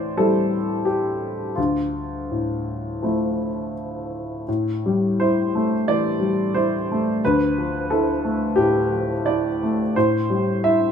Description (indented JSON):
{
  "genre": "neoclassical minimalist piano",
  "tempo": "86 BPM",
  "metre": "4/4",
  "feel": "uneven beats, rubato",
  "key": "A minor",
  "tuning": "A4 = 439 Hz",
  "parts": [
    { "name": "clear upright piano", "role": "solo", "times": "0.0-10.9 s", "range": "D2 to E5", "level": "-19 LUFS", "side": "equal", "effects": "none" }
  ],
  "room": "moderate stone room reverb, RT60 1.3 s",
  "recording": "minimal, uncompressed stereo recording",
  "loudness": "-20 LUFS",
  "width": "side -7 dB against mid",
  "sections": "0.0-4.5 A section; 4.5-10.9 A section",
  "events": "none",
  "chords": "0.0 Am7; 1.6 Dmadd9; 4.5 Am7; 7.2 Dmadd9; 10.0 Am7",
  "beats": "0.15 0.85 | 1.57 2.30 3.03 3.75 | 4.47 5.17 5.85 6.53 | 7.21 7.89 8.56 9.27 | 9.95 10.63"
}